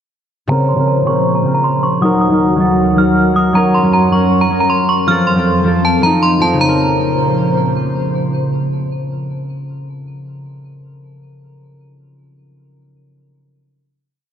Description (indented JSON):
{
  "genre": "hip hop, trap",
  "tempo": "157 BPM",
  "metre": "4/4",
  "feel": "half-time",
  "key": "Bb harmonic minor",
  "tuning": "A4 = 439 Hz",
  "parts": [
    { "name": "metallic FM bell", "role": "melody", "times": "0.5-7.7 s", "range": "A5 to F6", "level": "-17 LUFS", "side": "right 2 dB", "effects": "chorus, low-pass filter, ping-pong delay" },
    { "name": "concert harp", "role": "accompaniment", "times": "0.5-10.4 s", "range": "Db3 to Bb4", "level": "-15 LUFS", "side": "equal", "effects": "low-pass filter" },
    { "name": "airy breathy pad", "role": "sustained chords", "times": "0.5-9.8 s", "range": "Eb2 to C5", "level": "-18 LUFS", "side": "equal", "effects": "chorus, low-pass filter" }
  ],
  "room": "moderate lush hall reverb, RT60 2.8 s",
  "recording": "dark, warm production",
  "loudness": "-11 LUFS",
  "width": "side -8 dB against mid",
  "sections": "0.5-6.6 breakdown; 6.6-9.7 final chord",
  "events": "filter sweep 0.5-6.6",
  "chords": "0.5 Bbmadd9; 2.0 Ebm; 3.6 Gb; 5.1 F; 6.6 Bbmadd9",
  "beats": "| 0.49 0.88 1.26 1.64 | 2.02 2.41 2.79 3.17 | 3.55 3.93 4.32 4.70 | 5.08 5.46 5.84 6.23 | 6.61 6.99 7.37 7.76 | 8.14 8.52 8.90 9.29"
}